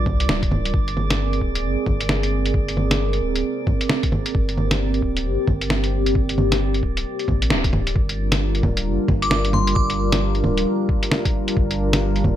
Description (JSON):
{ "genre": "future garage", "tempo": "133 BPM", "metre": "4/4", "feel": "swing 61% on 16ths", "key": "G phrygian", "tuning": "A4 = 439 Hz", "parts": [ { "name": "dark analog pad", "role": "sustained chords", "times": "0.0-12.4 s", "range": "G3 to Bb4", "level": "-24 LUFS", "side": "right 1 dB", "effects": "chorus, sidechain pumping" }, { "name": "warm sub bass", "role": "bass", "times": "0.0-12.4 s", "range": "D1 to C2", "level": "-23 LUFS", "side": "equal", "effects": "tube saturation" }, { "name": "drifting glass-harmonics texture", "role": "texture", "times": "0.0-8.0 s", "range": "D5", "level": "-34 LUFS", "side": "right 5 dB", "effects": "chorus, built-in reverb" }, { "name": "electronic kick drum", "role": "drums", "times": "0.1-12.4 s", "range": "none", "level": "-23 LUFS", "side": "equal", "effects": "none" }, { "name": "lo-fi sampler-style drum kit", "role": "drums", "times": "0.1-12.4 s", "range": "bongos, hi-hat, snare drum", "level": "-22 LUFS", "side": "equal", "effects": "none" }, { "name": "glassy synth bell", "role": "melody", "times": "9.2-10.1 s", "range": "C6 to D6", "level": "-25 LUFS", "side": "left 1 dB", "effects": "chorus, ping-pong delay" } ], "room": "light reverb", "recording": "none", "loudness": "-18 LUFS", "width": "side -11 dB against mid", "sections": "0.0-8.0 A section; 8.0-12.4 B section", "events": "band accent 7.5", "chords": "0.0 Gm7; 0.7 Abadd9; 8.0 Gm7", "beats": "0.29 | 0.74 1.19 1.64 2.09 | 2.54 3.00 3.45 3.90 | 4.35 4.80 5.25 5.70 | 6.15 6.61 7.06 7.51 | 7.96 8.41 8.86 9.31 | 9.76 10.21 10.66 11.12 | 11.57 12.02" }